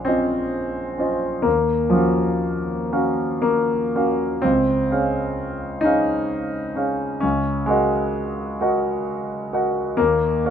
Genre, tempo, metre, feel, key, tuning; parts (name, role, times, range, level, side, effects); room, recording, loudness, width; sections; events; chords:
classical, impressionist solo piano; 64 BPM; 3/4; rubato; A4 = 441 Hz
clear concert grand piano; solo; 0.0-10.5 s; Bb1 to Gb5; -19 LUFS; equal
light reverb; -19 LUFS; side -8 dB against mid
0.0-10.5 A section
0.0 Bbm11; 1.4 Ebm9; 4.4 Dbmaj7; 7.2 Gb69/Db; 10.0 Eb5